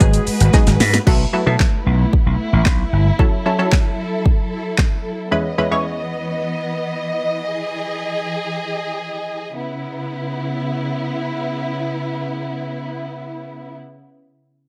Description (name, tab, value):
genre	dance-pop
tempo	113 BPM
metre	4/4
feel	straight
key	C# minor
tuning	A4 = 440 Hz
part	punchy chord stab	accompaniment	0.0-6.4 s	E2 to C#5	-23 LUFS	equal	chorus, sidechain pumping
part	dark studio string section	sustained chords	0.0-13.8 s	C#3 to D#5	-26 LUFS	equal	sidechain pumping
part	vintage slap bass	bass	0.0-3.1 s	G1 to B2	-18 LUFS	equal	sidechain pumping
part	deep house drum kit	drums	0.0-4.9 s	crash cymbal, handclaps, hi-hat, kick drum, shaker, snare drum	-18 LUFS	equal	none
room	light reverb, digital ambience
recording	none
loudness	-19 LUFS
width	mono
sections	0.0-1.1 A section; 1.1-9.6 B section; 9.6-13.8 C section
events	drop 0.0-1.1; drum fill 0.5-1.1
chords	0.0 G#m7; 1.1 B7sus4; 3.2 F#m7; 5.3 C#m7/E; 7.4 Emaj7; 9.6 C#m7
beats	0.01 0.54 | 1.07 1.60 2.13 2.66 | 3.19 3.72 4.25 4.78 | 5.31 5.84 6.38 6.91 | 7.44 7.97 8.50 9.03 | 9.56 10.09 10.62 11.15 | 11.69 12.22 12.75 13.28